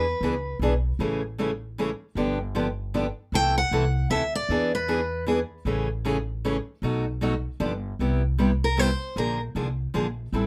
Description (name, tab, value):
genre	acoustic string swing (jazz manouche)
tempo	154 BPM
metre	3/4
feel	swing 61% on 8ths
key	unclear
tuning	A4 = 439 Hz
part	picked steel-string acoustic guitar	melody	0.0-0.6, 3.4-5.2, 8.6-9.4 s	Bb4 to G5	-28 LUFS	equal	none
part	picked steel-string acoustic guitar	accompaniment	0.0-10.5 s	B2 to A4	-28 LUFS	equal	none
part	upright bass	bass	0.0-10.5 s	G1 to E2	-31 LUFS	equal	none
room	light reverb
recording	none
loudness	-26 LUFS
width	mono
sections	0.0-8.0 A section; 8.0-10.5 B section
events	steel-string acoustic guitar solo 8.0-10.5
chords	0.0 E7; 1.0 Amaj7; 2.2 G7; 3.3 C6; 4.5 E7; 5.7 Amaj7; 6.8 B7; 7.6 G7; 8.0 Cmaj7; 9.2 Bb7